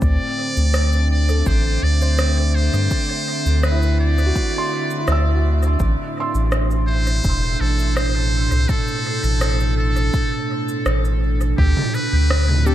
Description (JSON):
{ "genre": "ambient dub", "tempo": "83 BPM", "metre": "4/4", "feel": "straight", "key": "unclear", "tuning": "A4 = 440 Hz", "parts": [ { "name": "trumpet with metal mute", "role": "melody", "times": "0.0-12.7 s", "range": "G4 to D5", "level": "-25 LUFS", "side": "equal", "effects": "dub echo" }, { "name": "warbly tape-like pad", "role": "sustained chords", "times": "0.0-12.7 s", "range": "A2 to A5", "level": "-25 LUFS", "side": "equal", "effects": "chorus, built-in reverb" }, { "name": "soft dub sub bass", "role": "bass", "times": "0.0-12.7 s", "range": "E1 to G2", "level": "-17 LUFS", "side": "equal", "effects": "tube saturation" }, { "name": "electronic kick drum", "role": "drums", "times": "0.0-11.7 s", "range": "none", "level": "-22 LUFS", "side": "equal", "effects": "overdrive" }, { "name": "organic electronic drum kit", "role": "drums", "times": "0.0-12.7 s", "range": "rim click, shaker, toms", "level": "-29 LUFS", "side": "right 1 dB", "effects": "dub echo" }, { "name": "felt-muted upright piano", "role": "arpeggios", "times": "1.3-11.6 s", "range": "E4 to E6", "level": "-28 LUFS", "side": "right 2 dB", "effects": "tape echo" }, { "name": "tine electric piano", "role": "stabs", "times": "12.7 s", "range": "C4 to G4", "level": "-28 LUFS", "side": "left 4 dB", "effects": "none" } ], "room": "light reverb, digital ambience", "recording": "none", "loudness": "-16 LUFS", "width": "side -12 dB against mid", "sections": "0.0-11.6 A section; 11.6-12.7 B section", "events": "none", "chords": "0.0 D7(no3); 5.8 Am; 11.6 D7sus4" }